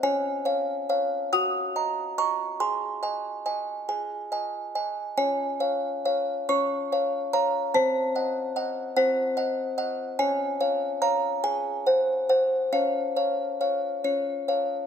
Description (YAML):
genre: classical, lullaby for music box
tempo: 47 BPM (dotted quarters)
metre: 6/8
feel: uneven beats, rubato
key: Db major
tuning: A4 = 439 Hz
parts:
  - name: music box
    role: solo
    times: 0.0-14.9 s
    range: C4 to Eb6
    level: -24 LUFS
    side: equal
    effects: none
room: moderate scoring stage reverb, RT60 2.0 s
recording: dark, warm production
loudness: -24 LUFS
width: side -8 dB against mid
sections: 0.0-14.9 A section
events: none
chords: 0.0 Db; 1.3 Ebm/Gb; 2.6 Ab; 5.2 Db; 7.7 Cdim7; 10.2 Db; 11.4 Ab7; 12.7 Db